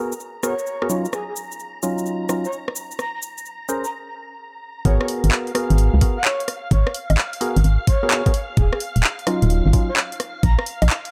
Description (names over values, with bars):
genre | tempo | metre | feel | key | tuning
UK garage, two-step garage | 129 BPM | 4/4 | swing 67% on 16ths | G# dorian | A4 = 439 Hz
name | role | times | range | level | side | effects
soft string machine | sustained chords | 0.0-11.1 s | E#5 to A#5 | -37 LUFS | equal | ensemble chorus, sidechain pumping
percussive organ stab | stabs | 0.0-9.9 s | F#3 to B#4 | -28 LUFS | equal | chorus, tape echo
punchy analog drum machine | drums | 0.1-11.1 s | bongos, handclaps, hi-hat, rim click, shaker | -26 LUFS | equal | overdrive
breathy flute-like synth lead | melody | 0.4-10.6 s | G#4 to A#5 | -31 LUFS | equal | lush chorus, cassette tape, tape echo
organ-like FM bass | bass | 4.9-10.9 s | D#1 to C#2 | -18 LUFS | equal | none
electronic kick drum | drums | 4.9-10.6 s | none | -21 LUFS | equal | overdrive
room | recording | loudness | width
little or no reverb | none | -21 LUFS | mono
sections
0.0-4.9 A section; 4.9-11.1 B section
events
break 3.9-4.9; drop 4.9-11.1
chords
0.0 G#m9; 0.9 D#m9; 3.0 A#m9; 4.9 G#m9; 8.3 D#m9; 10.4 A#5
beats
0.20 0.67 | 1.13 1.59 2.06 2.53 | 2.99 3.46 3.92 4.39 | 4.85 5.32 5.78 6.25 | 6.71 7.18 7.64 8.11 | 8.57 9.04 9.50 9.97 | 10.43 10.90